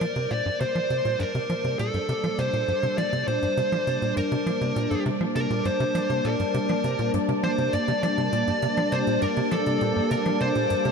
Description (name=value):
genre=ambient, sequencer-driven space music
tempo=101 BPM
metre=4/4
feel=straight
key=G minor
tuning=A4 = 440 Hz
part: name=fuzz lead guitar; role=melody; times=0.0-10.9 s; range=A4 to D5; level=-26 LUFS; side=equal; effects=distortion, analog delay
part: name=sweeping resonant pad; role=sustained chords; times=0.0-10.9 s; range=G3 to A5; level=-28 LUFS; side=equal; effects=chorus
part: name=tight sequencer bass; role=riff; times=0.0-10.9 s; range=G2 to F3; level=-28 LUFS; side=equal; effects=analog delay
part: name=electronic hi-hat and claves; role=percussion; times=0.0-10.9 s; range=none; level=-49 LUFS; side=right 2 dB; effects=none
part: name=bubbling stepped-filter texture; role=texture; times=0.0-10.9 s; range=D5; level=-36 LUFS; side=left 1 dB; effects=chorus, built-in reverb
room=wet huge ambient reverb, RT60 7.4 s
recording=none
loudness=-22 LUFS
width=side -5 dB against mid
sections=0.0-10.9 A section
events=fade-in on drum 0.0-10.9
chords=0.0 Gm